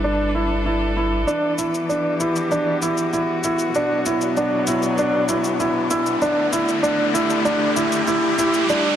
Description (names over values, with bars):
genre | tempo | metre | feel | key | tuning
piano and strings electronica | 97 BPM | 4/4 | straight | E minor | A4 = 444 Hz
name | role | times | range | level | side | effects
muted string quartet | sustained chords | 0.0-9.0 s | B2 to B4 | -24 LUFS | left 2 dB | shimmer reverb
dark concert grand piano | riff | 0.0-8.9 s | D4 to E4 | -20 LUFS | right 1 dB | digital delay, shimmer reverb
warm sub bass | bass | 0.0-1.2 s | G1 | -25 LUFS | equal | tube saturation
shaker | drums | 1.3-8.8 s | none | -30 LUFS | left 4 dB | overdrive
riser | sound effects | 3.1-9.0 s | none | -27 LUFS | left 1 dB | none
room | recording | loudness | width
moderate lush hall reverb, RT60 3.0 s | none | -18 LUFS | side -9 dB against mid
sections
0.0-1.3 A section; 1.3-9.0 B section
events
build-up 1.3-9.0; riser 3.1-9.0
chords
0.0 G; 1.3 Em7; 3.8 Bm; 6.2 Dsus4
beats
0.04 0.66 | 1.28 1.90 2.51 3.13 | 3.75 4.37 4.99 5.61 | 6.22 6.84 7.46 8.08 | 8.70